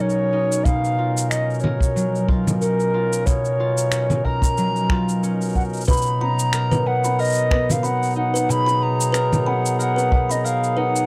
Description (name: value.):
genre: folktronica.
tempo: 92 BPM.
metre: 4/4.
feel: swing 56% on 16ths.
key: B lydian.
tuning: A4 = 440 Hz.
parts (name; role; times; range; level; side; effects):
baroque flute; melody; 0.0-11.1 s; A#4 to B5; -25 LUFS; equal; tape echo.
pedal harmonium; sustained chords; 0.0-11.1 s; B2 to A#4; -32 LUFS; equal; none.
concert harp; arpeggios; 0.0-11.1 s; B2 to A#4; -25 LUFS; equal; none.
electronic cabasa, finger snaps and congas; drums; 0.1-11.1 s; none; -28 LUFS; equal; studio reverb.
kick drum; drums; 0.7-10.3 s; none; -22 LUFS; equal; studio reverb.
kalimba; second line; 5.9-10.9 s; B4 to B5; -28 LUFS; equal; vintage 12-bit sampler grit, tape echo.
room: light reverb.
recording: dry, close 1970s-style studio recording.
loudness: -20 LUFS.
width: mono.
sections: 0.0-5.9 A section; 5.9-11.1 B section.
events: none.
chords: 0.0 D#m7/B; 0.7 F#maj7/B.